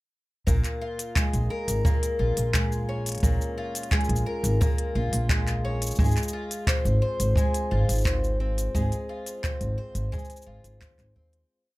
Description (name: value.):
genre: folktronica.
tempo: 87 BPM.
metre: 4/4.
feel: straight.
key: Bb minor.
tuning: A4 = 440 Hz.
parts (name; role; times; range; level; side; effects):
picked twelve-string acoustic guitar; arpeggios; 0.5-11.8 s; Bb2 to C5; -30 LUFS; left 1 dB; tape echo.
upright bass; bass; 0.5-11.4 s; Ab1 to Eb2; -26 LUFS; equal; none.
kick drum; drums; 0.5-11.0 s; none; -26 LUFS; equal; none.
organic electronic drum kit; drums; 0.5-11.5 s; handclaps, hi-hat, shaker; -31 LUFS; equal; none.
room: little or no reverb.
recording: none.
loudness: -23 LUFS.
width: side -19 dB against mid.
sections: 0.5-11.5 groove.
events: fade-out 7.8-11.5.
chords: 0.5 Bbm7; 6.0 Fm/Ab.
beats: | 0.47 1.16 1.85 2.54 | 3.23 3.92 4.61 5.30 | 5.99 6.68 7.37 8.06 | 8.75 9.44 10.12 10.81.